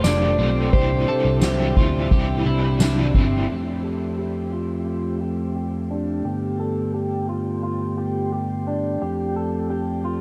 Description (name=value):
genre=dream pop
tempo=87 BPM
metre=4/4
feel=straight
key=F lydian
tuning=A4 = 440 Hz
part: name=clean lap steel guitar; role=melody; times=0.0-2.8 s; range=C5 to D5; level=-31 LUFS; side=equal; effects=digital delay
part: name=crunchy overdriven guitar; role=accompaniment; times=0.0-3.5 s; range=C3 to G4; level=-33 LUFS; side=equal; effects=tremolo, ensemble chorus
part: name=mellow tonewheel organ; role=sustained chords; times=0.0-10.2 s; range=F2 to E5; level=-27 LUFS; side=equal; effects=slow rotary speaker, low-pass filter
part: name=electric guitar at the edge of break-up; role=arpeggios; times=0.0-10.2 s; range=C4 to A4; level=-31 LUFS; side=equal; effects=subtle chorus, low-pass filter, digital delay
part: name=vintage muted picked electric bass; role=bass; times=0.0-3.4 s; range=F1 to D2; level=-25 LUFS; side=equal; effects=none
part: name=soft-mallet drum kit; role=drums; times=0.0-3.3 s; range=kick drum, ride cymbal, snare drum, tambourine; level=-24 LUFS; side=equal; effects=none
room=light reverb, small room ambience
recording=dark, warm production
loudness=-22 LUFS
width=mono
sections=0.0-3.5 A section; 3.5-10.2 B section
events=filter sweep 3.5-10.2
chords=0.0 Fadd9; 0.7 Cadd9; 3.5 Fadd9; 6.2 Gadd9; 9.0 Fadd9